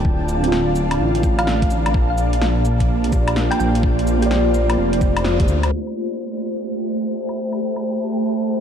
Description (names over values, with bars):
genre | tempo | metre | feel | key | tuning
future garage | 127 BPM | 4/4 | swing 65% on 16ths | unclear | A4 = 440 Hz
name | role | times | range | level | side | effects
muted felt-like synth keys | accompaniment | 0.0-8.6 s | D3 to D5 | -25 LUFS | right 2 dB | chorus, sidechain pumping, analog delay
ethereal airy pad | sustained chords | 0.0-8.6 s | A3 to A5 | -22 LUFS | equal | ensemble chorus, built-in reverb, sidechain pumping
dark detuned saw bass | bass | 0.0-5.7 s | D1 to D2 | -20 LUFS | equal | sidechain pumping
electronic kick drum | drums | 0.0-5.5 s | none | -19 LUFS | equal | overdrive, studio reverb
garage drum kit | drums | 0.3-7.8 s | cabasa, hi-hat, snare drum, woodblock | -28 LUFS | left 1 dB | overdrive, studio reverb
thumb-piano-like synth pluck | melody | 1.4-3.7 s | F5 to G5 | -30 LUFS | equal | chorus, ping-pong delay
flickering grainy texture | texture | 6.7-8.6 s | G4 to G5 | -36 LUFS | left 1 dB | built-in reverb, ensemble chorus
room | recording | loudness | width
moderate huge ambient reverb, RT60 8.1 s | dreamy mix soaked in reverb, cassette tape, low-pass filter | -17 LUFS | side -8 dB against mid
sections
0.0-5.7 A section; 5.7-8.6 B section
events
band accent 5.2; filter sweep on ambient pad 5.7-8.6; filter sweep 5.7-8.6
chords
0.0 Dm7; 1.9 Bb6; 5.7 Am7